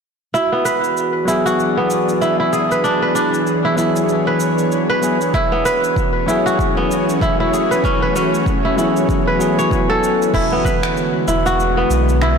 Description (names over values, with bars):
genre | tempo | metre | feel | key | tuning
organic downtempo | 96 BPM | 4/4 | swing 58% on 16ths | E mixolydian | A4 = 440 Hz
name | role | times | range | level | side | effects
bowed-like drone | sustained chords | 0.9-12.4 s | D3 to D5 | -20 LUFS | equal | built-in reverb, sidechain pumping
kora | arpeggios | 0.3-12.4 s | B3 to C#5 | -17 LUFS | right 1 dB | low-pass filter, ping-pong delay
organic electronic drum kit | drums | 0.3-12.4 s | crash cymbal, finger snaps, shaker | -30 LUFS | equal | overdrive
bronze singing bowl | texture | 0.4-10.4 s | F#4 | -31 LUFS | right 3 dB | none
bell-like tine electric piano | accompaniment | 1.3-10.3 s | F#3 to G#5 | -22 LUFS | left 3 dB | sidechain pumping, low-pass filter, ping-pong delay
electronic kick drum | drums | 5.3-10.8 s | none | -22 LUFS | equal | none
warm sub bass | bass | 10.3-12.4 s | E1 to B1 | -18 LUFS | equal | tube saturation
room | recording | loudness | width
wet concert hall reverb, RT60 2.2 s | blown-out, overdriven recording, overdrive | -14 LUFS | side -6 dB against mid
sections
0.3-10.3 A section; 10.3-12.4 B section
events
none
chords
0.3 E7; 5.3 A6; 10.3 E7